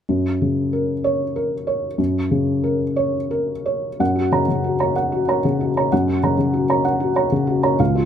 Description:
neoclassical minimalist piano; 63 BPM (dotted quarters); 6/8; rubato; F# major; A4 = 440 Hz
felt-muted upright piano; solo; 0.1-8.1 s; C#2 to A#5; -17 LUFS; equal
light reverb; close, detailed microphones; -18 LUFS; side -8 dB against mid
0.1-4.0 A section; 4.0-8.1 B section
0.1 F#

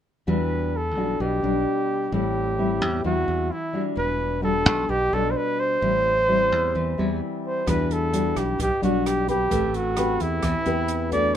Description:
bossa nova; 130 BPM; 4/4; straight; E minor; A4 = 436 Hz
warm flugelhorn; melody; 0.3-11.4 s; E4 to D5; -24 LUFS; right 1 dB
nylon-string guitar; accompaniment; 0.3-11.4 s; A2 to B4; -26 LUFS; left 2 dB
modern bright fingered electric bass; bass; 0.3-11.3 s; E1 to E2; -27 LUFS; right 1 dB
open jazz drum kit; drums; 7.7-11.2 s; hi-hat, kick drum, rim click; -33 LUFS; right 1 dB
moderate studio reverb, RT60 0.6 s; minimal, uncompressed stereo recording; -21 LUFS; side -9 dB against mid
0.3-7.7 A section; 7.7-11.4 B section
0.3 Em9; 2.1 Am7; 4.0 Em9; 5.8 Am7; 7.7 Em9; 9.5 Am9

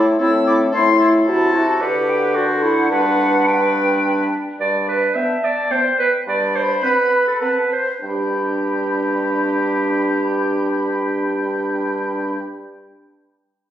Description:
quick classical-period movement for wind quintet; 98-112 BPM; 3/4; straight; G major; A4 = 440 Hz
clear oboe; second line; 0.0-12.4 s; A4 to G5; -27 LUFS; left 4 dB
bright clarinet; accompaniment; 0.0-12.4 s; D4 to E5; -20 LUFS; right 2 dB
mellow French horn; accompaniment; 0.0-12.4 s; B3 to B4; -22 LUFS; equal
mellow bassoon; bass; 0.0-12.4 s; G2 to D3; -22 LUFS; equal
silver concert flute; melody; 0.2-12.4 s; D5 to E6; -24 LUFS; left 3 dB
wet recital hall reverb, RT60 1.5 s; recorded on a phone in the room, studio reverb, compression, nothing above 10.8 kHz; -16 LUFS; side -11 dB against mid
0.0-4.6 A section; 4.6-8.0 B section; 8.0-11.6 C section
slowing down 3.8-8.0
0.0 Am; 1.3 Am/C; 1.8 G/D; 2.4 D7; 2.9 G; 6.3 Am9/G (rootless); 8.0 G

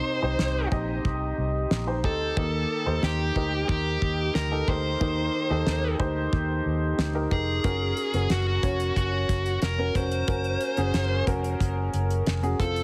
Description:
piano-driven pop; 91 BPM; 4/4; straight; A4 = 440 Hz
dark smooth lead guitar; melody; 0.0-12.8 s; Gb4 to C5; -32 LUFS; equal; overdrive
clear upright piano; accompaniment; 0.0-12.8 s; C3 to Eb5; -32 LUFS; equal
vintage muted fingered electric bass; bass; 0.2-12.8 s; F1 to Eb2; -30 LUFS; equal
damped 70s drum kit; drums; 0.4-12.8 s; hi-hat, kick drum, snare drum; -31 LUFS; equal
light reverb, studio reverb; heavily compressed radio sound, multiband compression; -26 LUFS; mono
0.0-12.8 A section
0.0 Cm; 2.4 Eb; 7.6 Gb

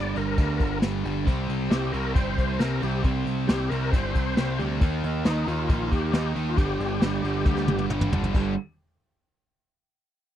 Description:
classic rock; 136 BPM; 4/4; straight; G minor; A4 = 440 Hz
overdriven tonewheel organ; melody; 0.0-7.9 s; Eb4 to D5; -31 LUFS; left 2 dB; slow rotary speaker, chorus vibrato
raw garage guitar; riff; 0.0-8.5 s; G2 to Eb4; -32 LUFS; right 12 dB; overdrive
tight distorted guitar; riff; 0.0-8.5 s; G2 to Eb4; -34 LUFS; left 12 dB; distortion
growling picked electric bass; bass; 0.0-8.6 s; G1 to Eb2; -28 LUFS; equal; overdrive
vintage brush drum kit; drums; 0.2-8.4 s; crash cymbal, kick drum, snare drum, toms; -23 LUFS; equal
distorted electric guitar; riff; 1.3-8.5 s; G2 to Eb4; -33 LUFS; equal; distortion
little or no reverb; dry, close 1970s-style studio recording; -23 LUFS; side -11 dB against mid
0.0-8.3 A section; 8.3-10.1 B section
drum fill 7.5-8.3
0.0 Gm; 1.3 C5; 4.8 Eb; 6.6 G5

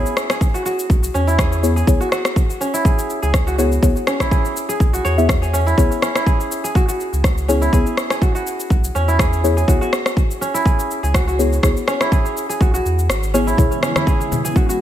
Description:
afro house; 123 BPM; 4/4; swing 54% on 16ths; C# minor; A4 = 440 Hz
kora; arpeggios; 0.0-14.8 s; C#4 to C#5; -22 LUFS; right 1 dB; sidechain pumping, ping-pong delay
deep mellow chord stab; stabs; 0.0-14.8 s; B3 to E5; -22 LUFS; left 3 dB; chorus, sidechain pumping, ping-pong delay
warm sub bass; bass; 0.0-13.7 s; G#1 to E2; -19 LUFS; equal; sidechain pumping
electronic cabasa and rim click; drums; 0.1-14.8 s; -23 LUFS; left 1 dB; studio reverb
electronic kick drum; drums; 0.4-14.7 s; -16 LUFS; equal; studio reverb
warm analog pad; sustained chords; 13.6-14.8 s; C#3 to E4; -25 LUFS; right 1 dB; chorus, sidechain pumping
congas; percussion; 13.6-14.7 s; -25 LUFS; left 3 dB
little or no reverb; -15 LUFS; side -12 dB against mid
0.0-14.8 A section
kick drops out 13.1-13.6
0.0 C#m7

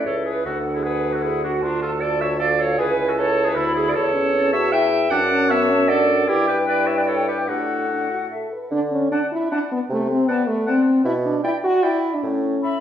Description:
quick classical-period movement for wind quintet; 153 BPM; 3/4; rubato; A major, D major from 4.0 s; A4 = 442 Hz
hollow concert flute; melody; 0.0-12.8 s; E5 to B5; -28 LUFS; left 5 dB
mellow French horn; accompaniment; 0.0-12.8 s; A3 to B4; -23 LUFS; equal
warm clarinet; accompaniment; 0.0-12.8 s; F4 to G5; -23 LUFS; right 3 dB
mellow bassoon; bass; 0.0-12.6 s; C#2 to D3; -24 LUFS; right 1 dB
warm oboe; second line; 0.1-12.8 s; D4 to G5; -26 LUFS; left 3 dB
wet stone room reverb, RT60 1.2 s; heard from further back in the room; -18 LUFS; side -10 dB against mid
0.0-8.7 A section; 8.7-12.8 B section
0.5 D; 1.6 Dm; 2.8 A/C#; 4.0 A7/E; 5.1 D/F#; 6.3 Em/G; 7.5 D/A; 8.3 A5; 8.7 D; 9.9 D7/C; 11.1 G/B; 12.2 A

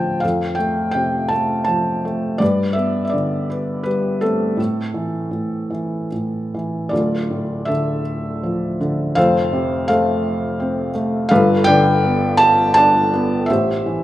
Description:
classical, lyrical solo piano; 82 BPM; 3/4; rubato; A4 = 440 Hz
felt-muted upright piano; solo; 0.0-14.0 s; D1 to A5; -16 LUFS; equal
moderate recital hall reverb, RT60 1.5 s; minimal, uncompressed stereo recording; -16 LUFS; side -14 dB against mid
0.0-6.9 A section; 6.9-14.0 A section
0.2 F; 2.4 Gadd9; 4.6 Am; 6.9 Dm; 9.2 F; 11.3 Gadd9; 13.5 Am7

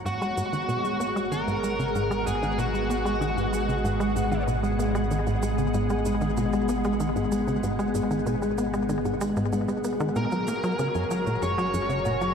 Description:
ambient, sequencer-driven space music; 95 BPM; 4/4; straight; G# minor; A4 = 440 Hz
string machine, full ensemble; sustained chords; 0.0-12.3 s; G#3 to A#5; -28 LUFS; equal; ensemble chorus
analog drone; bass; 1.4-12.3 s; F#1 to G#1; -33 LUFS; equal; chorus
pulsing gated texture; texture; 0.0-12.3 s; G#3 to G#4; -36 LUFS; left 4 dB
smooth overdriven lead guitar; melody; 0.1-4.4, 10.2-12.3 s; F#4 to C#5; -30 LUFS; equal; ping-pong delay
tight sequencer bass; riff; 0.1-12.3 s; F#2 to B3; -28 LUFS; equal; ping-pong delay
shaker and woodblock; percussion; 0.1-12.3 s; -43 LUFS; right 3 dB; ping-pong delay
wet cathedral reverb, RT60 6.2 s; in a vast, echoing space; -24 LUFS; side -7 dB against mid
0.0-12.3 A section
filter sweep on analog synth bass 0.0-12.3
0.1 G#m7; 10.2 F#add9

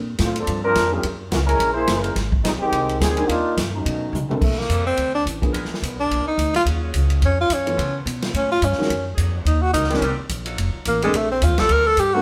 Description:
jazz, big band swing; 214 BPM; 4/4; swing 58% on 8ths; A4 = 440 Hz
upright bass; bass; 0.0-12.2 s; F1 to C#3; -26 LUFS; equal
dark trombone section; second line; 0.2-4.3 s; Eb3 to C5; -23 LUFS; equal
swinging big-band drum kit; drums; 0.2-12.0 s; crash cymbal, hi-hat, kick drum, ride cymbal, snare drum, toms; -28 LUFS; equal
warm upright piano; accompaniment; 0.9-1.0, 3.2-5.5, 7.7-12.2 s; Eb3 to Bb4; -28 LUFS; equal
warm tenor saxophone; melody; 4.4-12.2 s; Ab3 to Bb4; -22 LUFS; equal
warm saxophone section; sustained chords; 4.7-12.0 s; F3 to Bb4; -36 LUFS; equal
moderate stone room reverb, RT60 1.0 s; band playing live in one room; -21 LUFS; mono
0.0-4.4 A section; 4.4-12.2 B section
trombone section solo 0.0-4.4; drum fill 4.1; tenor saxophone solo 4.4-12.2
0.0 Bbmaj13; 1.0 Gb9; 2.2 Abmaj7; 3.3 Ebmaj9#11; 3.8 B9; 4.4 Bbmaj13; 5.5 Bb7b9; 6.7 Ebm11; 7.8 Db7b13; 8.9 Gb69; 10.0 Cm7; 10.6 F7b9; 11.1 Bbmaj13

